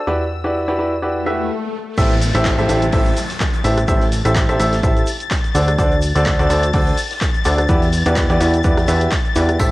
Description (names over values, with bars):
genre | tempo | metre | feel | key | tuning
piano house | 126 BPM | 4/4 | swing 55% on 16ths | A dorian | A4 = 440 Hz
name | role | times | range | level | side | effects
dark symphonic string section | sustained chords | 0.0-9.7 s | E6 to A6 | -27 LUFS | left 5 dB | sidechain pumping, cassette tape
clear baby grand piano | riff | 0.1-9.7 s | D4 to E5 | -19 LUFS | equal | sidechain pumping, cassette tape, tape echo
plucky analog bass | bass | 0.1-9.7 s | A1 to E2 | -18 LUFS | equal | tube saturation, sidechain pumping
swell and downlifter | sound effects | 1.1-5.8 s | none | -27 LUFS | left 2 dB | none
big rock drum kit | drums | 2.0-9.7 s | hi-hat, shaker, snare drum | -34 LUFS | left 1 dB | high-pass filter on hats, small room reverb, cassette tape, high-pass filter on snare, high-pass filter on perc, high-pass filter on room
electronic kick drum | drums | 2.0-9.7 s | none | -19 LUFS | equal | small room reverb, cassette tape
punchy analog drum machine | drums | 2.0-9.7 s | cabasa, crash cymbal, handclaps, hi-hat, rim click | -26 LUFS | equal | small room reverb, cassette tape
tambourine | percussion | 9.6-9.7 s | none | -30 LUFS | right 3 dB | none
room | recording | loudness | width
light reverb, studio ambience | home recording on cassette | -14 LUFS | side -19 dB against mid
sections
0.0-2.0 A section; 2.0-9.7 B section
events
swell 1.1-2.0; stop 1.5-2.0; drop 2.0-9.7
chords
0.1 Em9; 2.0 Am7; 5.5 D7; 7.7 Em9